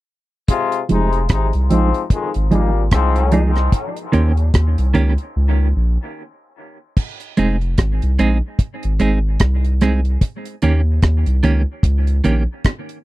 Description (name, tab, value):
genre	dub reggae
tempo	74 BPM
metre	4/4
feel	swing 59% on 16ths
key	F minor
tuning	A4 = 440 Hz
part	clear trombone section	second line	0.5-3.5 s	F2 to F4	-22 LUFS	left 5 dB	dub echo
part	deep reggae drum kit	drums	0.5-13.0 s	crash cymbal, hi-hat, kick drum, rim click	-16 LUFS	equal	none
part	clean electric guitar	accompaniment	0.9-12.4 s	Eb3 to Ab4	-19 LUFS	right 3 dB	tremolo, low-pass filter, dub echo
part	soft dub sub bass	bass	0.9-12.5 s	F1 to Eb2	-16 LUFS	equal	none
room	little or no reverb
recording	dry, close 1970s-style studio recording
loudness	-15 LUFS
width	side -17 dB against mid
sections	0.5-7.0 A section; 7.0-13.0 B section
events	filter sweep on clean electric guitar 0.5-7.0; break 5.3-7.0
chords	0.5 Fm7; 3.7 Eb7; 7.0 Fm7 (rootless); 10.2 Eb7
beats	| 0.48 1.29 2.10 2.92 | 3.73 4.54 5.35 6.16 | 6.97 7.78 8.59 9.40 | 10.21 11.02 11.83 12.64